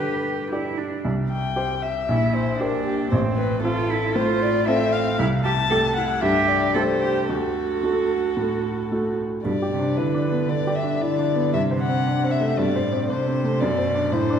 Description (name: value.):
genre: quick classical-period movement for piano trio.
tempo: 115 BPM.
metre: 4/4.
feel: straight.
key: G major from 5.2 s.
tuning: A4 = 439 Hz.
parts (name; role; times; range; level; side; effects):
dark violin; melody; 0.0-14.4 s; G4 to A5; -26 LUFS; left 5 dB; none.
warm cello; second line; 0.0-14.4 s; A2 to A4; -25 LUFS; right 5 dB; none.
bright baby grand piano; accompaniment; 0.0-14.4 s; A1 to D5; -23 LUFS; equal; none.
room: wet scoring stage reverb, RT60 1.6 s.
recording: recorded in a church or concert hall.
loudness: -20 LUFS.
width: side -8 dB against mid.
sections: 0.0-9.5 A section; 9.5-14.4 B section.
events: none.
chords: 0.0 G; 1.0 C5; 2.1 C7/Bb; 3.1 F/A; 5.2 Am7/C; 7.3 D; 9.5 G; 11.5 Am7/G; 13.6 D7/F#.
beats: 0.52 | 1.04 1.56 2.08 2.60 | 3.12 3.64 4.16 4.67 | 5.19 5.71 6.22 6.75 | 7.29 7.83 8.37 8.91 | 9.45 9.98 10.50 11.02 | 11.54 12.06 12.58 13.10 | 13.61 14.13.